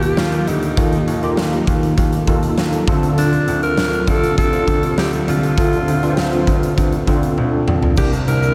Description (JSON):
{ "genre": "1980s-style pop", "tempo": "100 BPM", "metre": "4/4", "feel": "straight", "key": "unclear", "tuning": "A4 = 440 Hz", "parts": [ { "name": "raspy alto saxophone", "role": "melody", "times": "0.0-8.5 s", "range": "D4 to Bb4", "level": "-25 LUFS", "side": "equal", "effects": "diffuse ambient delay" }, { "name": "bell-like tine electric piano", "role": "accompaniment", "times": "0.0-8.5 s", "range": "C3 to C5", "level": "-21 LUFS", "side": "equal", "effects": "ensemble chorus" }, { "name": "warm baby grand piano", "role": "bass", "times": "0.0-8.5 s", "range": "Bb1 to Eb2", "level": "-25 LUFS", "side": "equal", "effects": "none" }, { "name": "huge arena drum kit", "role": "drums", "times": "0.0-8.4 s", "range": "crash cymbal, hi-hat, kick drum, snare drum, toms", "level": "-22 LUFS", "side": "equal", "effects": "none" }, { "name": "shimmering ambient pad", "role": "sustained chords", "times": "8.4-8.5 s", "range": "D3 to E4", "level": "-30 LUFS", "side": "equal", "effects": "none" }, { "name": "egg shaker", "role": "percussion", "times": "8.0-8.5 s", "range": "none", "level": "-42 LUFS", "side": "equal", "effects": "none" } ], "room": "moderate huge ambient reverb, RT60 6.9 s", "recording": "dreamy mix soaked in reverb", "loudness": "-17 LUFS", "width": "mono", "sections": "0.0-8.0 A section", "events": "drum fill 7.4-8.0", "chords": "0.0 Ebadd9; 2.9 Dm7; 8.0 C9", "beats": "0.17 | 0.78 1.38 1.98 2.58 | 3.17 3.77 4.38 4.97 | 5.58 6.17 6.78 7.38 | 7.97" }